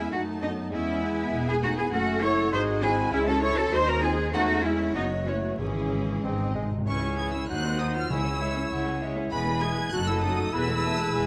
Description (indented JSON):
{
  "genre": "quick classical-period movement for symphony orchestra",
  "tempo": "99 BPM",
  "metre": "2/4",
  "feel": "rubato",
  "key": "C# minor",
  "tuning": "A4 = 437 Hz",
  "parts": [
    { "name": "warm studio violin section", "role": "melody", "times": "0.0-11.3 s", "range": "B#4 to G#6", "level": "-39 LUFS", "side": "equal", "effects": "none" },
    { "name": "clear studio violin section", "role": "second line", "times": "0.0-11.3 s", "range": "Eb4 to C#6", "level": "-41 LUFS", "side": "equal", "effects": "none" },
    { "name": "hollow concert flute", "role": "second line", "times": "0.0-11.3 s", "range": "G#4 to C#6", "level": "-36 LUFS", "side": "equal", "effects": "none" },
    { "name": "mellow clarinet", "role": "second line", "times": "0.0-11.3 s", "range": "E3 to A4", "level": "-36 LUFS", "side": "equal", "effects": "none" },
    { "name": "rich studio viola section", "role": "accompaniment", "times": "0.0-11.3 s", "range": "E3 to A4", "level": "-37 LUFS", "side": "equal", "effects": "none" },
    { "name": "mellow French horn section", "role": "sustained chords", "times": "0.0-11.3 s", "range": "C#3 to G#4", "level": "-35 LUFS", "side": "equal", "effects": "none" },
    { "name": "rich studio cello section", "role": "bass", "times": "0.0-11.3 s", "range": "C#2 to C#5", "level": "-33 LUFS", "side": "equal", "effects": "none" },
    { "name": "rich studio double bass section", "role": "bass", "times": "0.0-11.3 s", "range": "E1 to F#2", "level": "-35 LUFS", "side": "equal", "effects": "none" },
    { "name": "timpani", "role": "percussion", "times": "5.6-9.0 s", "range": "G#2 to C#3", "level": "-37 LUFS", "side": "equal", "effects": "none" },
    { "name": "warm bassoon", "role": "accompaniment", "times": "6.2-6.7 s", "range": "G#3 to B#3", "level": "-38 LUFS", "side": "equal", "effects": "none" },
    { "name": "bright trumpet section", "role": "stabs", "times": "6.9-11.3 s", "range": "A4 to C#5", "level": "-38 LUFS", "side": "equal", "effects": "none" }
  ],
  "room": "moderate scoring stage reverb, RT60 1.7 s",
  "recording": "vinyl crackle",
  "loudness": "-27 LUFS",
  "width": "mono",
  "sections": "0.0-6.9 A section; 6.9-11.3 B section",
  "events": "timpani fill 6.2-6.9",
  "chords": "0.1 D#dim/F#; 0.7 E; 1.9 F#m; 2.5 G#7; 3.1 C#m; 3.7 G#13/D#; 4.3 C#m/E; 4.9 F#m; 5.6 C#m/G#; 6.2 G#; 6.9 C#m; 7.5 Cdim/Eb; 8.1 C#m; 9.3 E; 9.9 D#dim/F#; 10.5 E"
}